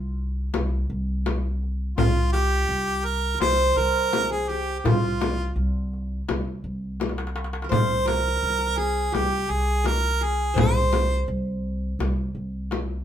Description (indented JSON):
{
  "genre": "Arabic maqam ensemble",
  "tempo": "84 BPM",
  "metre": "4/4",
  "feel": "straight",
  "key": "C maqam hijaz",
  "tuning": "A4 = 439 Hz",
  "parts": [
    { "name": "qanun", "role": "second line", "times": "0.0-11.6 s", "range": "F4 to C5", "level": "-28 LUFS", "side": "right 2 dB", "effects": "none" },
    { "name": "upright bass", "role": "bass", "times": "0.0-13.0 s", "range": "C2", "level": "-26 LUFS", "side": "equal", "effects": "none" },
    { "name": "darbuka", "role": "percussion", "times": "0.5-12.9 s", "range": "none", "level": "-27 LUFS", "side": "equal", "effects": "none" },
    { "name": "frame drum", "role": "percussion", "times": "0.5-12.9 s", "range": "none", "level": "-28 LUFS", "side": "left 5 dB", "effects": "none" },
    { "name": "clear harmonica", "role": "melody", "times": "2.0-11.3 s", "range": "F4 to C5", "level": "-25 LUFS", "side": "right 1 dB", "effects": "none" }
  ],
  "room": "light reverb",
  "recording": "band playing live in one room",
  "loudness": "-22 LUFS",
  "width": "side -10 dB against mid",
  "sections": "0.0-13.0 A section",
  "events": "drum fill 7.0-7.7",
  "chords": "none"
}